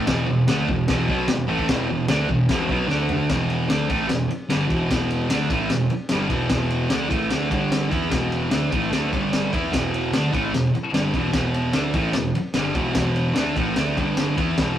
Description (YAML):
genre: garage rock duo or trio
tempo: 149 BPM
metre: 4/4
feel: straight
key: unclear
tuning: A4 = 440 Hz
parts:
  - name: thick fuzz guitar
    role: riff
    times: 0.0-14.8 s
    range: E2 to E4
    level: -21 LUFS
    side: right 1 dB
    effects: distortion
  - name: growling picked electric bass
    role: bass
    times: 0.0-14.8 s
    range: E1 to E2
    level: -29 LUFS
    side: equal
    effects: overdrive
  - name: crunchy breakbeat drum kit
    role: drums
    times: 0.1-14.7 s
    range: crash cymbal, kick drum, ride cymbal, snare drum, toms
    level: -25 LUFS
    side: left 1 dB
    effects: none
room: wet studio reverb, RT60 0.6 s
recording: rough rehearsal-room recording, warm saturation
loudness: -19 LUFS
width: side -11 dB against mid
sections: 0.0-3.3 A section; 3.3-14.8 B section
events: drum fill 2.9-3.3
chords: 0.0 E5; 2.9 D5; 3.3 E5; 7.5 G5; 7.9 E5; 9.1 G5; 9.5 E5; 14.0 G5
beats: | 0.08 0.48 0.88 1.28 | 1.69 2.09 2.49 2.89 | 3.29 3.70 4.10 4.50 | 4.90 5.30 5.71 6.11 | 6.51 6.91 7.31 7.72 | 8.12 8.52 8.92 9.33 | 9.73 10.13 10.53 10.94 | 11.34 11.74 12.15 12.55 | 12.96 13.36 13.77 14.17 | 14.58